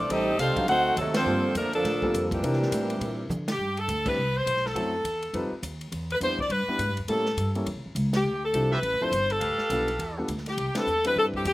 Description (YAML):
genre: jazz, big band swing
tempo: 206 BPM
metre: 4/4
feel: swing 61% on 8ths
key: C major from 3.6 s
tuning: A4 = 439 Hz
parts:
  - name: bright saxophone section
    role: melody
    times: 0.0-11.5 s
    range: E3 to F#5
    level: -26 LUFS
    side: left 1 dB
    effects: slapback echo
  - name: warm trombone section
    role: second line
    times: 0.0-3.3 s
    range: Bb2 to A4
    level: -29 LUFS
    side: right 3 dB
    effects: none
  - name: upright bass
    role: bass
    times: 0.0-11.5 s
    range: D1 to D3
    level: -31 LUFS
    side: equal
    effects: none
  - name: warm grand piano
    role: accompaniment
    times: 0.1-11.4 s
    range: F3 to C5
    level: -31 LUFS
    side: left 1 dB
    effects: none
  - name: swinging big-band drum kit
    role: drums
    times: 0.1-11.5 s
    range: crash cymbal, hi-hat, kick drum, ride cymbal, snare drum, toms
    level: -36 LUFS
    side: equal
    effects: none
  - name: clear trumpet section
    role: stabs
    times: 8.7-10.2 s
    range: F4 to F5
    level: -32 LUFS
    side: right 2 dB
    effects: slapback echo
room: little or no reverb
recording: recorded outdoors, with no room sound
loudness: -24 LUFS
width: side -17 dB against mid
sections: 0.0-3.6 A section; 3.6-11.5 B section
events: band accent 1.1, 3.4, 4.0, 8.1, 10.7; drum fill 3.3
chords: 0.1 Am7b5; 0.7 D7b9; 1.3 Gm11; 2.4 C9; 3.6 Cmaj7sus2; 4.8 F#m7b5; 5.3 Fsus2; 5.9 Em7; 7.1 A7b9; 8.2 Dm11; 9.4 G9; 10.6 Cmaj9